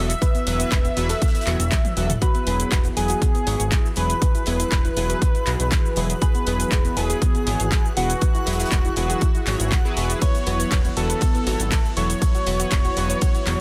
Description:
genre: progressive house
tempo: 120 BPM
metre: 4/4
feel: straight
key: E major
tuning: A4 = 442 Hz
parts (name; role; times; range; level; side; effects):
- unison lead; melody; 0.0-13.6 s; F#4 to E5; -30 LUFS; equal; sidechain pumping, dub echo
- soft synth bell; second line; 0.0-13.6 s; F#5 to E6; -36 LUFS; equal; none
- chorused polysynth; stabs; 0.0-13.6 s; E3 to C#5; -33 LUFS; equal; sidechain pumping, dub echo
- fat analog bass; bass; 0.0-13.6 s; E1 to B1; -27 LUFS; equal; sidechain pumping
- backwards swelling texture; texture; 0.1-13.6 s; E4 to F#6; -43 LUFS; equal; none
- house drum kit; drums; 0.1-13.6 s; handclaps, hi-hat, ride cymbal, shaker, toms; -31 LUFS; equal; none
- soft round pluck; arpeggios; 0.2-13.4 s; B3 to C#5; -34 LUFS; equal; chorus, sidechain pumping, dub echo
- damped 70s drum kit; drums; 0.2-13.6 s; hi-hat, snare drum; -40 LUFS; equal; none
- electronic kick drum; drums; 0.2-13.3 s; none; -22 LUFS; equal; none
- warm analog pad; sustained chords; 2.2-13.6 s; E3 to B4; -35 LUFS; equal; chorus, sidechain pumping
room: digital ambience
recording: dense, heavily limited modern master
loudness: -21 LUFS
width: mono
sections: 0.0-13.6 A section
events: drum fill 1.7-2.2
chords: 0.0 Bsus4/E; 2.2 Eadd9; 10.2 Bsus4/E

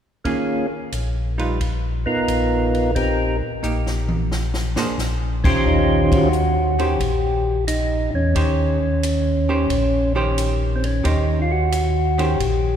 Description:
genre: soul jazz organ trio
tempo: 89 BPM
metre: 4/4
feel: swing 68% on 8ths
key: Eb mixolydian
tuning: A4 = 440 Hz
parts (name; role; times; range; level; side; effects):
- percussive tonewheel organ; melody; 0.2-12.8 s; Eb3 to C5; -21 LUFS; equal; slow rotary speaker
- archtop guitar, miked and amplified; accompaniment; 0.2-12.4 s; Eb3 to C5; -27 LUFS; right 2 dB; none
- compact cocktail drum kit; drums; 0.2-12.6 s; crash cymbal, hi-hat, kick drum, ride cymbal, snare drum, toms; -26 LUFS; equal; none
- mellow tonewheel organ; bass; 0.9-12.8 s; Bb1 to Fb2; -21 LUFS; equal; overdrive, chorus vibrato, slow rotary speaker
room: wet church reverb, RT60 3.2 s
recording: recorded in a church or concert hall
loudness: -18 LUFS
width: side -9 dB against mid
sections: 0.2-5.7 A section; 5.7-12.8 B section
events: drum fill 3.6-5.0; band accent 6.0-6.3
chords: 0.2 Eb7sus4; 1.6 Bmaj7#11/A#; 3.0 Cm7; 4.3 Bb9; 5.7 Eb13

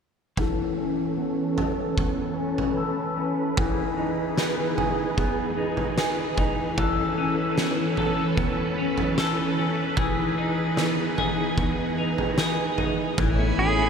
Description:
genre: dream pop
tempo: 75 BPM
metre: 4/4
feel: straight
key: unclear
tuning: A4 = 439 Hz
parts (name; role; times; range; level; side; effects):
- string machine, violins; sustained chords; 0.4-13.9 s; E3 to B5; -27 LUFS; right 2 dB; phaser, ensemble chorus, low-pass filter
- semi-hollow electric guitar; arpeggios; 0.4-13.9 s; E3 to A4; -27 LUFS; left 3 dB; wide subtle chorus, low-pass filter, tape echo
- oversized low-tuned drum kit; drums; 0.4-13.4 s; kick drum, snare drum, toms; -28 LUFS; right 1 dB; none
- round analog bass; bass; 13.2-13.9 s; A1; -26 LUFS; equal; none
- drifting glass-harmonics texture; texture; 13.3-13.9 s; G#5 to B5; -30 LUFS; right 6 dB; chorus, built-in reverb
- clean lap steel guitar; melody; 13.6-13.9 s; G#4; -22 LUFS; right 2 dB; none
room: wet huge ambient reverb, RT60 8.3 s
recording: dreamy mix soaked in reverb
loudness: -22 LUFS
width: side -6 dB against mid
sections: 0.4-13.2 A section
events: filter sweep 0.4-13.2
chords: 0.4 Aadd9; 3.6 Emaj7; 6.8 Aadd9; 10.0 Emaj7; 13.2 Aadd9

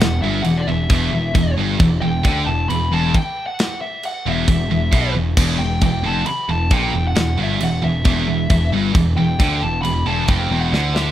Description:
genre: heavy metal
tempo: 134 BPM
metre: 4/4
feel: straight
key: E minor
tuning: A4 = 439 Hz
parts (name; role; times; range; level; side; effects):
- smooth overdriven lead guitar; melody; 0.0-11.1 s; D5 to B5; -25 LUFS; left 2 dB; digital delay
- high-gain distorted guitar; riff; 0.0-11.1 s; E2 to D3; -21 LUFS; right 4 dB; distortion
- high-gain distorted guitar; riff; 0.0-11.1 s; E2 to D3; -26 LUFS; left 2 dB; distortion
- sludgy distorted guitar; riff; 0.0-11.1 s; E2 to D3; -26 LUFS; left 9 dB; overdrive
- fuzz picked electric bass; bass; 0.0-11.1 s; E1 to D2; -22 LUFS; equal; overdrive
- tight metal drum kit; drums; 0.0-11.1 s; china cymbal, crash cymbal, kick drum, snare drum; -20 LUFS; equal; none
room: small room ambience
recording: rough home demo mix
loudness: -16 LUFS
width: side -12 dB against mid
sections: 0.0-11.1 A section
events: half time 0.0-11.1; drum fill 10.7-11.1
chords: 0.0 Em

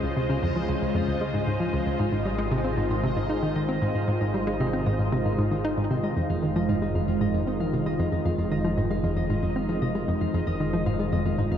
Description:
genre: ambient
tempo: 115 BPM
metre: 4/4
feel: straight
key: F minor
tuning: A4 = 440 Hz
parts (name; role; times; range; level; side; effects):
- lush unison pad; sustained chords; 0.0-11.6 s; Db3 to C5; -28 LUFS; right 1 dB; chorus, phaser
- concert harp; arpeggios; 0.0-11.6 s; Eb4 to Ab5; -36 LUFS; left 3 dB; auto-pan, tape echo
- hollow square pluck; riff; 0.0-11.6 s; Db2 to Eb4; -26 LUFS; equal; chorus, tape echo
- fat analog bass; bass; 0.0-11.6 s; F1 to Db2; -34 LUFS; equal; none
- bubbling stepped-filter texture; texture; 0.0-11.6 s; Eb5; -37 LUFS; left 1 dB; chorus, built-in reverb
room: moderate huge ambient reverb, RT60 8.2 s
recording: dark, warm production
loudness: -23 LUFS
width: side -9 dB against mid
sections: 0.0-11.6 A section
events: none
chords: 0.0 Dbmaj7; 2.0 Ab6; 6.2 Fm7

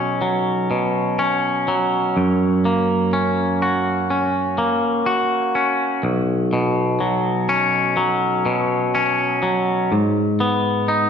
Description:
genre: rock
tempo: 62 BPM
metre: 4/4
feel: straight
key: unclear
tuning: A4 = 440 Hz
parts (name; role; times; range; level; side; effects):
- twangy electric guitar; solo; 0.0-11.1 s; B1 to F#4; -17 LUFS; equal; none
room: wet recital hall reverb, RT60 1.8 s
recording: recorded in a church or concert hall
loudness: -17 LUFS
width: side -7 dB against mid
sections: 0.0-11.1 A section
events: none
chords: 0.0 Bsus2; 2.2 F#; 6.0 Bsus2; 9.9 G#m

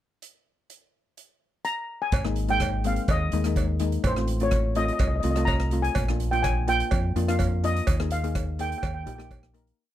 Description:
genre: calypso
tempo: 125 BPM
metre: 4/4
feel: straight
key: Ab major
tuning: A4 = 440 Hz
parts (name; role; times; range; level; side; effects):
- street-band drum kit; drums; 0.2-9.8 s; hi-hat, kick drum, rim click; -29 LUFS; equal; none
- steel pan; melody; 1.6-9.3 s; C5 to Bb5; -28 LUFS; equal; none
- deep dub fingered electric bass; bass; 2.1-9.7 s; Ab1 to F2; -27 LUFS; equal; none
- cowbell; percussion; 2.1-9.4 s; none; -34 LUFS; right 8 dB; none
- steel pan; accompaniment; 2.2-9.8 s; Ab3 to Bb4; -30 LUFS; left 4 dB; none
room: little or no reverb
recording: dry, close 1970s-style studio recording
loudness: -23 LUFS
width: side -12 dB against mid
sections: 0.2-2.1 pickup bar; 2.1-9.8 verse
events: fade-out 7.9-9.8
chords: 0.2 N.C.; 2.1 Absus2; 4.0 F/A; 6.0 Bb; 7.9 Ebsus4; 8.8 Eb

